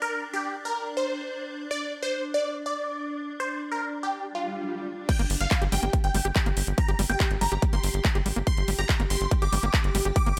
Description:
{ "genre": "psychedelic trance", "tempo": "142 BPM", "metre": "4/4", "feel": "straight", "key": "G minor", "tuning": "A4 = 440 Hz", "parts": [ { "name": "supersaw stab", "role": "melody", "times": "0.0-10.4 s", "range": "F4 to D6", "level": "-33 LUFS", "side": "equal", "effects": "phaser, cassette tape, sidechain pumping, dub echo" }, { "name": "evolving wavetable pad", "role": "sustained chords", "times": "0.0-10.4 s", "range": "D4 to G4", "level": "-39 LUFS", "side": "equal", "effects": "ensemble chorus, built-in reverb, phaser, sidechain pumping" }, { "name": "swell", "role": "sound effects", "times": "4.4-5.1 s", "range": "none", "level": "-42 LUFS", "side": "equal", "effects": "none" }, { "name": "overdriven acid bass", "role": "riff", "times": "5.1-10.3 s", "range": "G3 to G4", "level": "-35 LUFS", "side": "equal", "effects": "distortion, sidechain pumping, dub echo" }, { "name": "big-room dance drum kit", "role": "drums", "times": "5.1-10.4 s", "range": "crash cymbal, handclaps, hi-hat", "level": "-33 LUFS", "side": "equal", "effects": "none" }, { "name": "electronic kick drum", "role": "drums", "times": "5.1-10.2 s", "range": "none", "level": "-27 LUFS", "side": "equal", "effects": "none" }, { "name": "tight sequencer bass", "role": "bass", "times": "5.2-10.4 s", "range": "G1 to Ab1", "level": "-30 LUFS", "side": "equal", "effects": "none" } ], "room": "light reverb, digital ambience", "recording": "none", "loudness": "-27 LUFS", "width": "mono", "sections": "0.0-5.1 A section; 5.1-10.4 B section", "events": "swell 4.4-5.1; drop 5.1-10.4", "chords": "0.0 N.C.; 5.1 G5" }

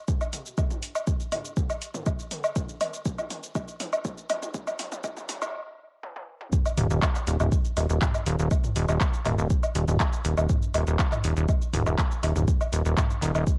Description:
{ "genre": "melodic techno", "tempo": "121 BPM", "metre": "4/4", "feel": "straight", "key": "unclear", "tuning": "A4 = 441 Hz", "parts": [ { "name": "electronic kick drum", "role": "drums", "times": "0.1-13.6 s", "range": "none", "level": "-28 LUFS", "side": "equal", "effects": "cassette tape" }, { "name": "techno drum kit", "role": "drums", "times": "0.1-13.6 s", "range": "handclaps, hi-hat, shaker, toms, woodblock", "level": "-32 LUFS", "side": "equal", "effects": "high-pass filter on perc, cassette tape, high-pass filter on toms, high-pass filter on hats, high-pass filter on snare, high-pass filter on room" }, { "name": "plucky analog bass", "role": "bass", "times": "6.8-13.4 s", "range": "Eb1", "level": "-26 LUFS", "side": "equal", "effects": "sidechain pumping" } ], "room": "light reverb", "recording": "home recording on cassette, high-pass filter", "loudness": "-27 LUFS", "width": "mono", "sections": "0.0-6.5 A section; 6.5-13.6 B section", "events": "build-up 0.0-6.5; drum fill 0.0-5.5, 6.0-6.5; filter sweep 0.0-6.5; stop 5.5-6.5; drop 6.5-13.6", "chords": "none" }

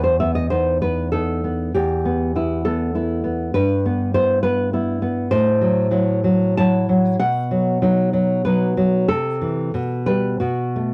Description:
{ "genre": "romantic piece for solo classical guitar", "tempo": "81-103 BPM", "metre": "3/4", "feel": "rubato", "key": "E minor", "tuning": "A4 = 439 Hz", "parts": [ { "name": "nylon-string guitar", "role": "solo", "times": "0.0-10.9 s", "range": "E2 to A5", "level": "-20 LUFS", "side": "equal", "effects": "cassette tape" } ], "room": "light reverb", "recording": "home recording on cassette", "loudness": "-20 LUFS", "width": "mono", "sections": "0.0-10.9 A section", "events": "none", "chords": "0.0 B7/E; 1.7 Em; 3.5 Em/G; 5.3 F#m7b5/A; 7.2 B; 9.1 C; 9.7 Gadd9/B; 10.4 B5" }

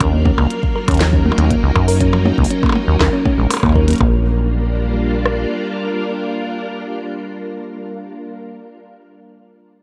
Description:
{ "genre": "IDM", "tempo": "120 BPM", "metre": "4/4", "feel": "straight", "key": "unclear", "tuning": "A4 = 440 Hz", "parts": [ { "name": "soft string machine", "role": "sustained chords", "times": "0.0-8.4 s", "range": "Gb3 to Bb4", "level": "-25 LUFS", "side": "equal", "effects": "ensemble chorus" }, { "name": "thumb-piano-like synth pluck", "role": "arpeggios", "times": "0.0-4.2 s", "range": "F3 to Bb4", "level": "-22 LUFS", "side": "equal", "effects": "chorus, tape echo" }, { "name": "deep acid bass", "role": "bass", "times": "0.0-5.5 s", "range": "Bb1 to Gb2", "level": "-18 LUFS", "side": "equal", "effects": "none" }, { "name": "glitchy drum kit", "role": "drums", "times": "0.0-5.4 s", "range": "kick drum, rim click", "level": "-21 LUFS", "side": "equal", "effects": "none" }, { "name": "glitchy drum kit", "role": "drums", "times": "0.0-4.1 s", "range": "hi-hat, percussion blips, snare drum", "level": "-24 LUFS", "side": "equal", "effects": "none" } ], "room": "light reverb", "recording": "dark, warm production", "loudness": "-16 LUFS", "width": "mono", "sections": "0.0-4.0 A section; 4.0-8.0 B section", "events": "none", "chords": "0.0 Ebm7; 4.0 Bb6" }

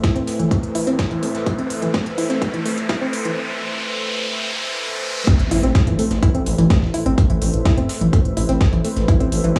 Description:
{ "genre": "melodic techno", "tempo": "126 BPM", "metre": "4/4", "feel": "straight", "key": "A minor", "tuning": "A4 = 441 Hz", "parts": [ { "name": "deep dark ambient pad", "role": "sustained chords", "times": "0.0-9.6 s", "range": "A3 to E5", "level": "-30 LUFS", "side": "equal", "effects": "chorus, built-in reverb, sidechain pumping" }, { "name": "soft round pluck", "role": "arpeggios", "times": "0.0-9.6 s", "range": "E3 to E4", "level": "-25 LUFS", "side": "equal", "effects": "chorus, sidechain pumping, tape echo" }, { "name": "swelling detuned saw bass", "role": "bass", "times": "0.0-9.6 s", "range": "G1 to A2", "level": "-25 LUFS", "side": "equal", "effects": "sidechain pumping" }, { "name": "analog drone", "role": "drone", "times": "0.0-9.6 s", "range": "A2", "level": "-34 LUFS", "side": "equal", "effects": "none" }, { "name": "breakbeat sampler-style drum kit", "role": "drums", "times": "0.0-9.6 s", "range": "hi-hat, snare drum", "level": "-35 LUFS", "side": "equal", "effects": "sidechain pumping on hats, high-pass filter on hats, high-pass filter on snare" }, { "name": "electronic hi-hat", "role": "drums", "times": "0.0-9.6 s", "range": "none", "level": "-35 LUFS", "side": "equal", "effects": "overdrive, sidechain pumping on hats" }, { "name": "electronic kick drum", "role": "drums", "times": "0.0-9.6 s", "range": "none", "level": "-19 LUFS", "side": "equal", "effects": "none" }, { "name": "riser and impact", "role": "sound effects", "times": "0.3-7.2 s", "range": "none", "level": "-29 LUFS", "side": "equal", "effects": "none" } ], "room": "light reverb", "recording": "high-pass filter, small room ambience", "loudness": "-19 LUFS", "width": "mono", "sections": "0.0-5.3 A section; 5.3-9.6 B section", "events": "build-up 0.0-5.3; filter sweep 0.0-5.3; riser 0.3-5.3; drop 5.3-9.6; impact 5.3-7.2", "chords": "0.0 Amadd9" }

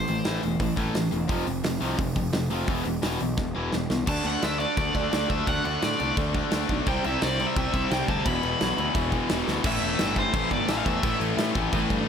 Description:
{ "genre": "punk rock", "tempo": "173 BPM", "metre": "4/4", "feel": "straight", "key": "A minor", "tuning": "A4 = 441 Hz", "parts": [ { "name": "overdriven electric guitar", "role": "melody", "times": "0.0-0.4, 4.1-11.2 s", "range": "C5 to B5", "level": "-30 LUFS", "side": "equal", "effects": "ping-pong delay" }, { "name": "biting overdriven guitar", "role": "riff", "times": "0.0-12.1 s", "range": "E2 to D4", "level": "-31 LUFS", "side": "right 12 dB", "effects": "none" }, { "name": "tight distorted guitar", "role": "riff", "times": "0.0-12.1 s", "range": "E2 to D4", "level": "-30 LUFS", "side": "left 11 dB", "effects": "distortion" }, { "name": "fuzz picked electric bass", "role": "bass", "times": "0.0-12.0 s", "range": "E1 to A2", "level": "-31 LUFS", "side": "equal", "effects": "overdrive" }, { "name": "big rock drum kit", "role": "drums", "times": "0.1-12.0 s", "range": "crash cymbal, hi-hat, kick drum, snare drum", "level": "-29 LUFS", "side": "equal", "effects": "none" }, { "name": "biting overdriven guitar", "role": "riff", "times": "6.9-12.1 s", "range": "E2 to C4", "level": "-33 LUFS", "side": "equal", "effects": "none" } ], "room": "light reverb", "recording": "none", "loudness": "-23 LUFS", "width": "side -7 dB against mid", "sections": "0.0-4.1 A section; 4.1-9.7 B section; 9.7-12.1 C section", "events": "drum fill 3.4-4.1, 9.5", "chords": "0.0 Am; 1.3 F5; 2.7 E5; 4.1 D5; 6.9 C; 8.3 E5; 9.7 A5" }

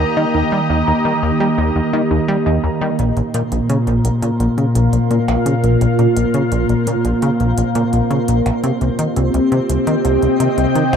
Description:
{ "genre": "ambient, sequencer-driven space music", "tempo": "85 BPM", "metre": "4/4", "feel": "straight", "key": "unclear", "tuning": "A4 = 443 Hz", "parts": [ { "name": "phased analog pad", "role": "sustained chords", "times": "0.0-11.0 s", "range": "Bb2 to Bb5", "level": "-16 LUFS", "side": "equal", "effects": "phaser, chorus" }, { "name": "plucky analog bass", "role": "riff", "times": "0.0-11.0 s", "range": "Bb1 to G3", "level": "-18 LUFS", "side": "left 1 dB", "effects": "tape echo" }, { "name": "warbly dusty pluck", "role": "arpeggios", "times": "0.2-2.8 s", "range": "Eb4 to Bb5", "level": "-26 LUFS", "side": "right 1 dB", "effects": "chorus, auto-pan, cassette tape, tape echo" }, { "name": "electronic hi-hat and percussion blips", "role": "percussion", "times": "3.0-11.0 s", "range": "none", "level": "-28 LUFS", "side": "right 2 dB", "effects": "tape echo" }, { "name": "twinkling granular texture", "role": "texture", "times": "3.5-11.0 s", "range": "C4 to C5", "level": "-33 LUFS", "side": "left 1 dB", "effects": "built-in reverb" } ], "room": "wet plate reverb, RT60 2.7 s", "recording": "none", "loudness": "-14 LUFS", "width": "side -7 dB against mid", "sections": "0.0-3.0 A section; 3.0-11.0 B section", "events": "fade-in on synth texture 3.0-11.0", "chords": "0.0 Eb; 3.0 Bbm; 8.6 Cm" }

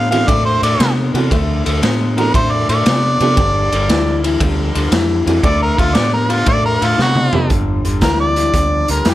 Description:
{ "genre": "electric blues shuffle", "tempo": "116 BPM", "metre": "4/4", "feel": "swing 67% on 8ths", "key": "G mixolydian", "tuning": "A4 = 443 Hz", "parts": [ { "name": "clear harmonica", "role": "melody", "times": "0.0-9.1 s", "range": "F4 to F5", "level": "-17 LUFS", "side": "equal", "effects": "overdrive" }, { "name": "electric guitar through a small old amp", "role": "riff", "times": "0.0-9.1 s", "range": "G2 to B3", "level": "-19 LUFS", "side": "left 3 dB", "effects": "none" }, { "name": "vintage muted fingered electric bass", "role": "bass", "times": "0.0-9.1 s", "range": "G1 to C3", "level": "-19 LUFS", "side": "equal", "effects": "none" }, { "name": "honky-tonk upright piano", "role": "accompaniment", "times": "0.1-7.5 s", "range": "E3 to G4", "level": "-21 LUFS", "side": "right 5 dB", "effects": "none" }, { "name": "raw garage drum kit", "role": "drums", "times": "0.1-9.1 s", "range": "hi-hat, kick drum, ride cymbal, snare drum, toms", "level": "-18 LUFS", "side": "equal", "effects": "none" } ], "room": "light reverb", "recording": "none", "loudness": "-12 LUFS", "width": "side -14 dB against mid", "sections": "0.0-7.5 A section; 7.5-9.1 B section", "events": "harmonica solo 0.0-7.5; drum fill 7.0-7.5", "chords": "0.0 D9; 3.4 G5; 5.4 D7; 7.5 G5" }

